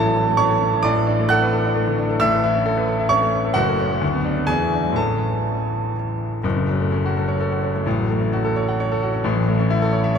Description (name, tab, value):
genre	classical, virtuoso piano study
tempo	130 BPM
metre	3/4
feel	rubato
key	A major, F# minor from 6.4 s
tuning	A4 = 445 Hz
part	clear grand piano	solo	0.0-10.2 s	F#1 to F#6	-18 LUFS	equal	none
room	wet cathedral reverb, RT60 6.6 s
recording	in a vast, echoing space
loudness	-18 LUFS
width	side -7 dB against mid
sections	0.0-6.4 A section; 6.4-10.2 B section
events	none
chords	0.0 A; 0.9 D/A; 2.2 A; 3.6 F#m; 4.0 Bm/D; 4.5 E9; 5.0 A; 6.4 F#m; 7.9 F#m/A; 9.2 A